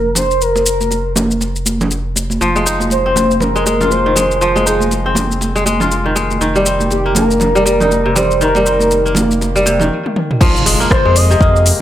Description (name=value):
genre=afro house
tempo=120 BPM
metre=4/4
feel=swing 59% on 16ths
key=F minor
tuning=A4 = 441 Hz
part: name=expressive portamento lead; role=melody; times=0.0-11.7 s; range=G4 to Eb5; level=-16 LUFS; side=equal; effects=wide subtle chorus, tape echo
part: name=round analog bass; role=bass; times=0.0-11.7 s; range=F1 to F2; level=-19 LUFS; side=equal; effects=sidechain pumping
part: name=deep house drum kit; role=drums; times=0.2-11.8 s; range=crash cymbal, hi-hat, rim click, shaker, toms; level=-19 LUFS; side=left 1 dB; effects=none
part: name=congas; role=percussion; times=0.2-9.9 s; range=none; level=-19 LUFS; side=right 2 dB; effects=none
part: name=kora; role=arpeggios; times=2.4-11.8 s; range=C3 to F4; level=-16 LUFS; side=equal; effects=sidechain pumping, tape echo
part: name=electronic kick drum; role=drums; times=10.4-11.5 s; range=none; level=-12 LUFS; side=equal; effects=none
part: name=impact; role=sound effects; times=10.4-11.8 s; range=none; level=-21 LUFS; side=equal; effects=none
room=moderate digital room reverb, RT60 1.2 s, digital ambience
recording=none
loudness=-11 LUFS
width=side -12 dB against mid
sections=0.0-10.4 A section; 10.4-11.8 B section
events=stop 9.9-10.4; drum fill 10.0-10.4; drop 10.4-11.8; impact 10.4-11.8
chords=0.0 N.C.; 2.4 Fm7; 6.4 Eb6/F; 10.4 Fm7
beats=| 0.41 0.91 1.41 1.91 | 2.41 2.91 3.41 3.91 | 4.41 4.91 5.41 5.91 | 6.41 6.91 7.41 7.91 | 8.41 8.91 9.41 9.91 | 10.41 10.91 11.41